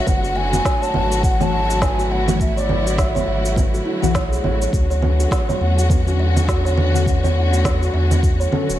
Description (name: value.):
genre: organic downtempo.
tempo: 103 BPM.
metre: 4/4.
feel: swing 59% on 16ths.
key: F# minor.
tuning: A4 = 439 Hz.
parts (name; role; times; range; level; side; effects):
bansuri; melody; 0.0-3.9 s; D5 to A5; -24 LUFS; left 1 dB; tape echo.
warm symphonic string section; sustained chords; 0.0-8.8 s; D3 to F#4; -25 LUFS; left 1 dB; sidechain pumping.
kalimba; arpeggios; 0.0-8.8 s; E4 to F#5; -25 LUFS; right 1 dB; tape echo.
warm sub bass; bass; 0.1-8.8 s; D1 to E2; -19 LUFS; equal; none.
electronic congas, shaker and snare drum; drums; 0.1-8.8 s; none; -25 LUFS; right 2 dB; none.
electronic kick drum; drums; 0.1-8.4 s; none; -20 LUFS; equal; none.
deep mellow chord stab; accompaniment; 1.4-8.7 s; D3 to A4; -25 LUFS; left 4 dB; chorus, sidechain pumping, tape echo.
room: light reverb, digital ambience.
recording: none.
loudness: -16 LUFS.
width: side -13 dB against mid.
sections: 0.0-8.8 A section.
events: none.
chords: 0.1 F#m7; 4.7 Dmaj7.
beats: | 0.07 0.65 1.24 1.82 | 2.40 2.98 3.56 4.15 | 4.73 5.31 5.89 6.48 | 7.06 7.64 8.22.